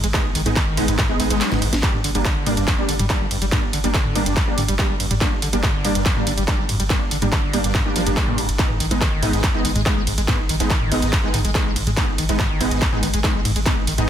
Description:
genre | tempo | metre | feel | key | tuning
driving peak-time techno | 142 BPM | 4/4 | straight | unclear | A4 = 440 Hz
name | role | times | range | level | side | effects
overdriven acid bass | riff | 0.0-14.0 s | F2 to Ab3 | -27 LUFS | equal | wide subtle chorus, sidechain pumping, tape echo
warm sub bass | bass | 0.0-14.1 s | G1 to Ab1 | -25 LUFS | equal | overdrive, sidechain pumping, low-pass filter
techno drum kit | drums | 0.0-14.1 s | handclaps, hi-hat, ride cymbal, snare drum, toms | -23 LUFS | equal | overdrive, sidechain pumping on hats, studio reverb, sidechain pumping on cymbals, sidechain pumping on toms
rave stab | stabs | 0.1-14.1 s | G3 to Eb4 | -24 LUFS | right 1 dB | chorus, built-in reverb, sidechain pumping, tape echo
electronic kick drum | drums | 0.1-13.7 s | none | -22 LUFS | equal | distortion, overdrive, studio reverb
room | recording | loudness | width
light reverb | dense, heavily limited modern master | -17 LUFS | side -10 dB against mid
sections
0.0-14.1 A section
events
kick drops out 1.4-1.8; drum fill 1.4-1.8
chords
0.0 Abm; 1.8 Gm; 8.6 Abm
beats
| 0.14 0.56 0.99 1.41 | 1.83 2.25 2.68 3.10 | 3.52 3.94 4.37 4.79 | 5.21 5.63 6.06 6.48 | 6.90 7.32 7.75 8.17 | 8.59 9.01 9.44 9.86 | 10.28 10.70 11.13 11.55 | 11.97 12.39 12.82 13.24 | 13.66 14.08

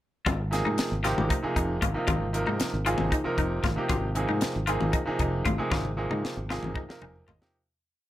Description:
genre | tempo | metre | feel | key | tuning
electric jazz fusion | 231 BPM (eighths) | 7/8 | straight | Ab major | A4 = 440 Hz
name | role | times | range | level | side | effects
semi-hollow electric guitar | stabs | 0.3-7.4 s | Eb4 to F4 | -33 LUFS | left 4 dB | lush chorus
fretless electric bass | bass | 0.3-7.4 s | F1 to Ab2 | -30 LUFS | equal | analog chorus
tight funk drum kit | drums | 0.3-7.5 s | hi-hat, kick drum, snare drum, toms | -31 LUFS | equal | none
congas | percussion | 0.3-7.4 s | none | -34 LUFS | left 4 dB | none
bright concert grand piano | accompaniment | 0.5-7.5 s | C3 to Ab5 | -30 LUFS | right 1 dB | none
room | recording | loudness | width
light reverb | none | -25 LUFS | side -14 dB against mid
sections
0.3-7.5 groove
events
fade-out 5.7-7.5; drum fill 5.7-7.5; grand piano fill 6.8-7.5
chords
0.3 Ab6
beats
| 0.27 0.53 0.79 1.05 1.31 1.57 1.83 | 2.09 2.35 2.61 2.87 3.12 3.38 3.64 | 3.90 4.16 4.42 4.68 4.94 5.20 5.46 | 5.72 5.98 6.24 6.50 6.76 7.02 7.28

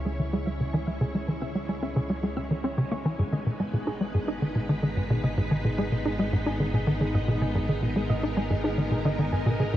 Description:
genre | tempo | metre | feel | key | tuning
ambient, sequencer-driven space music | 110 BPM | 4/4 | straight | G# minor | A4 = 440 Hz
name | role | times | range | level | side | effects
string machine, full ensemble | sustained chords | 0.0-9.8 s | G#3 to C#5 | -33 LUFS | equal | ensemble chorus
soft round pluck | arpeggios | 0.0-9.7 s | G#4 to E6 | -38 LUFS | right 2 dB | chorus, auto-pan, ping-pong delay
analog drone | bass | 0.0-9.8 s | G#1 to C#2 | -34 LUFS | equal | chorus, tube saturation
tight sequencer bass | riff | 0.1-9.8 s | G#2 to D#4 | -26 LUFS | equal | analog chorus, ping-pong delay
room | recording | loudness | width
moderate huge ambient reverb, RT60 8.7 s | worn, warbling old tape, cassette tape, warbly pitch drift | -25 LUFS | side -13 dB against mid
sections
0.0-9.8 A section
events
fade-in on synth arpeggio sound 0.0-9.8; fade-in on string machine 0.0-9.8; filter sweep on analog synth bass 0.0-9.8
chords
0.0 C#m; 3.2 G#m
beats
0.46 | 1.01 1.55 2.10 2.65 | 3.19 3.74 4.28 4.83 | 5.37 5.92 6.46 7.01 | 7.55 8.10 8.64 9.19 | 9.74

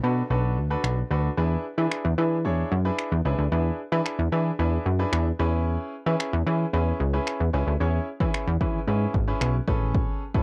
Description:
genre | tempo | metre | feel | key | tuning
dance-pop | 112 BPM | 4/4 | straight | unclear | A4 = 442 Hz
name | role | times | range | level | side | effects
bright concert grand piano | accompaniment | 0.0-10.4 s | C#4 to C#5 | -32 LUFS | equal | sidechain pumping, cassette tape, plate reverb
plucky analog bass | bass | 0.0-10.4 s | G#1 to E3 | -26 LUFS | equal | sidechain pumping
downlifter | sound effects | 0.2-1.4 s | none | barely audible | none | none
punchy analog drum machine | drums | 0.8-10.4 s | finger snaps, kick drum | -29 LUFS | equal | cassette tape
room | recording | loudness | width
little or no reverb | home recording on cassette | -25 LUFS | mono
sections
0.0-10.4 A section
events
none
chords
0.0 Bm7; 1.4 E7; 5.4 C#m7; 9.7 Amaj9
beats
0.30 0.84 | 1.38 1.91 2.45 2.98 | 3.52 4.05 4.59 5.13 | 5.66 6.20 6.73 7.27 | 7.80 8.34 8.88 9.41 | 9.95

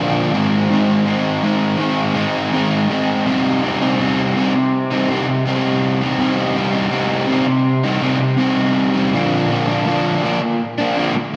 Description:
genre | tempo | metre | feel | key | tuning
rock | 82 BPM | 4/4 | straight | C minor | A4 = 440 Hz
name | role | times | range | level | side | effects
overdriven semi-hollow guitar | solo | 0.0-11.4 s | Ab2 to Eb4 | -17 LUFS | equal | spring reverb, slapback echo
room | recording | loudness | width
wet lush hall reverb, RT60 2.5 s | big arena sound | -17 LUFS | mono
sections
0.0-3.3 A section; 3.3-11.4 B section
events
build-up 0.0-3.3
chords
0.3 Ab; 3.3 Cm; 9.1 Bb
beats
| 0.33 1.06 1.80 2.53 | 3.26 4.00 4.73 5.46 | 6.20 6.93 7.66 8.39 | 9.13 9.86 10.59 11.32

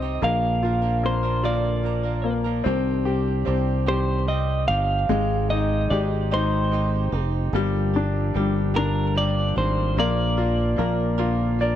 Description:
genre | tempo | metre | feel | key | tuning
six-eight pop ballad | 49 BPM (dotted quarters) | 6/8 | straight | C minor | A4 = 440 Hz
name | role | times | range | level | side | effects
clean electric guitar | melody | 0.0-11.8 s | Bb4 to F5 | -26 LUFS | equal | spring reverb, tape echo
clear concert grand piano | accompaniment | 0.0-11.8 s | G3 to D5 | -26 LUFS | left 6 dB | none
direct-recorded clean electric guitar | arpeggios | 0.0-11.8 s | G2 to Bb4 | -31 LUFS | right 17 dB | none
fingered electric bass | bass | 0.0-11.8 s | F1 to C2 | -24 LUFS | equal | none
room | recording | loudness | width
little or no reverb | dry, close 1970s-style studio recording | -20 LUFS | side -11 dB against mid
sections
0.0-2.7 A section; 2.7-11.8 B section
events
grand piano fill 11.2-11.8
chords
0.2 Bb; 2.7 Cmadd9; 5.1 Abmaj7; 7.5 Gm7; 10.0 Bb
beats
| 0.23 1.45 | 2.67 3.88 | 5.10 6.32 | 7.54 8.76 | 9.98 11.20

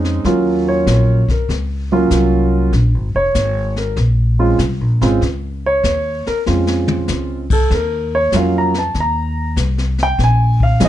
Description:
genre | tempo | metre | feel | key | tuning
jazz piano trio | 97 BPM | 4/4 | swing 68% on 8ths | Bb minor | A4 = 438 Hz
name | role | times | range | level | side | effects
warm concert grand piano | melody | 0.0-10.9 s | F3 to Bb5 | -16 LUFS | right 2 dB | none
upright bass | bass | 0.0-10.9 s | F1 to F2 | -17 LUFS | left 1 dB | none
jazz brush drum kit | drums | 0.0-10.9 s | brushed snare drum, crash cymbal, hi-hat, kick drum, snare drum, toms | -21 LUFS | left 2 dB | none
room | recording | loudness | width
light reverb | dark, warm production, nothing above 11.0 kHz | -14 LUFS | side -12 dB against mid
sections
0.0-10.9 A section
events
grand piano solo 0.0-10.9; drum fill 6.5-7.1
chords
0.2 Ebm7; 2.7 Bbm9; 7.7 Eb7(no3); 10.2 Bb7(no3)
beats
| 0.24 0.86 1.49 2.11 | 2.73 3.35 3.97 4.60 | 5.22 5.84 6.46 7.08 | 7.70 8.32 8.94 9.56 | 10.19 10.81

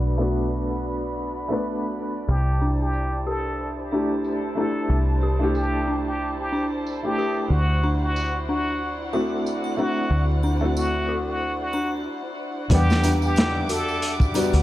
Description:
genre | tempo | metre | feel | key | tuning
trip hop | 92 BPM | 4/4 | swing 56% on 16ths | E minor | A4 = 440 Hz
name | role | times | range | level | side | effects
warm upright piano | accompaniment | 0.0-14.6 s | G3 to F#5 | -26 LUFS | equal | tremolo, vintage 12-bit sampler grit, tape echo
dark studio violin section | sustained chords | 0.0-14.6 s | G3 to D6 | -32 LUFS | equal | vintage 12-bit sampler grit, low-pass filter
deep dub fingered electric bass | bass | 0.0-14.6 s | B1 to E2 | -23 LUFS | equal | none
trumpet with plunger mute | melody | 2.3-14.2 s | F#4 to A4 | -29 LUFS | equal | tape echo
dark detuned synth bell | arpeggios | 2.6-14.6 s | D4 to G4 | -29 LUFS | left 2 dB | chorus, tape echo
triangle and tambourine | percussion | 2.6-14.6 s | none | -41 LUFS | right 6 dB | none
crunchy breakbeat drum kit | drums | 12.7-14.6 s | hi-hat, kick drum, snare drum | -23 LUFS | equal | none
room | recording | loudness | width
light reverb, small room ambience | dark, warm production, vinyl crackle, low-pass filter | -21 LUFS | side -15 dB against mid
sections
0.0-12.7 A section; 12.7-14.6 B section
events
filter sweep on violin section 0.0-12.7; filter sweep 0.0-12.7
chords
0.0 Bm7; 2.3 C69; 7.5 D9; 12.7 Em9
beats
0.33 0.98 1.64 | 2.29 2.94 3.59 4.24 | 4.90 5.55 6.20 6.85 | 7.50 8.16 8.81 9.46 | 10.11 10.77 11.42 12.07 | 12.72 13.37 14.03

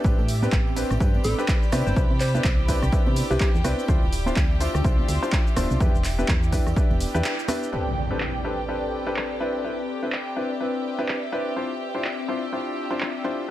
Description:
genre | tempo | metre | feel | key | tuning
piano house | 125 BPM | 4/4 | swing 59% on 16ths | unclear | A4 = 439 Hz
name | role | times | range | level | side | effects
clear studio violin section | sustained chords | 0.0-13.5 s | G4 to G5 | -36 LUFS | left 1 dB | sidechain pumping
clear upright piano | riff | 0.0-13.5 s | C4 to C5 | -28 LUFS | left 1 dB | sidechain pumping, tape echo
solid FM bass | bass | 0.0-7.2 s | D1 to C3 | -25 LUFS | equal | sidechain pumping
electronic kick drum | drums | 0.0-6.9 s | none | -22 LUFS | equal | overdrive
tambourine and congas | percussion | 0.0-7.7 s | none | -35 LUFS | right 2 dB | none
airy breathy pad | texture | 0.0-13.5 s | C4 to C6 | -32 LUFS | left 1 dB | chorus, phaser, sidechain pumping
punchy analog drum machine | drums | 0.1-13.1 s | cabasa, handclaps, hi-hat, rim click | -31 LUFS | right 1 dB | overdrive, low-pass filter on cymbals, low-pass filter on perc, low-pass filter on hats, low-pass filter on snare
soft struck synth lead | melody | 1.2-3.5 s | G4 to C5 | -30 LUFS | equal | chorus, tape echo
impact | sound effects | 7.7-9.6 s | none | -31 LUFS | equal | none
room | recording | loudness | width
light reverb | none | -21 LUFS | side -14 dB against mid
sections
0.0-7.7 A section; 7.7-13.5 B section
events
break 7.2-7.7; band accent 7.2; impact 7.7-9.6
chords
0.0 Am11; 1.7 Cmaj9; 3.9 Dm9; 5.8 Em7; 7.7 Cmaj9; 11.6 Dm9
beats
| 0.04 0.53 1.00 1.49 | 1.97 2.44 2.92 3.40 | 3.88 4.37 4.84 5.33 | 5.80 6.29 6.76 7.25 | 7.72 8.21 8.69 9.16 | 9.64 10.12 10.61 11.09 | 11.56 12.04 12.53 13.01 | 13.48

